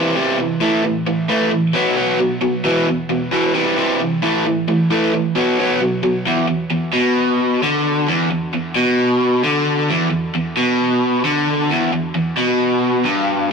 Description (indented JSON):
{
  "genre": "rock",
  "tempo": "132 BPM",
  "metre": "4/4",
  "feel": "straight",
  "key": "unclear",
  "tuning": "A4 = 440 Hz",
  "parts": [
    { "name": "overdriven electric guitar", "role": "solo", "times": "0.0-13.5 s", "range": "E2 to B3", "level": "-15 LUFS", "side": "equal", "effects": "tape echo" }
  ],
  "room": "wet studio reverb, RT60 0.6 s",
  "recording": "rough rehearsal-room recording, warm saturation",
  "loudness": "-15 LUFS",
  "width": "side -5 dB against mid",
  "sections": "0.0-6.3 A section; 6.3-13.5 B section",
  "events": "none",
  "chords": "0.0 C; 0.6 A5; 1.7 B5; 2.7 E5; 3.6 C; 4.2 A5; 5.4 B5; 6.3 E5"
}